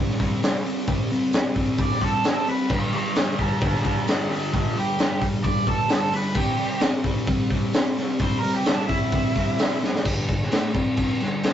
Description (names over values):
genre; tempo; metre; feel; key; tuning
garage rock duo or trio; 131 BPM; 4/4; straight; unclear; A4 = 440 Hz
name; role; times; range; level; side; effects
fuzz guitar; riff; 0.0-11.5 s; G2 to C4; -25 LUFS; left 1 dB; distortion
crunchy breakbeat drum kit; drums; 0.1-11.5 s; crash cymbal, hi-hat, kick drum, snare drum; -23 LUFS; equal; none
tambourine; percussion; 0.4-9.7 s; none; -43 LUFS; right 8 dB; none
octave-fuzz lead guitar; melody; 1.8-9.7 s; B3 to D5; -26 LUFS; right 2 dB; distortion
room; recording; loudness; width
light reverb; rough rehearsal-room recording, nothing above 7.8 kHz; -20 LUFS; side -10 dB against mid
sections
0.0-10.1 A section; 10.1-11.5 B section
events
drum fill 9.8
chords
0.0 C5; 2.7 G; 6.4 C; 10.1 G5; 10.8 C5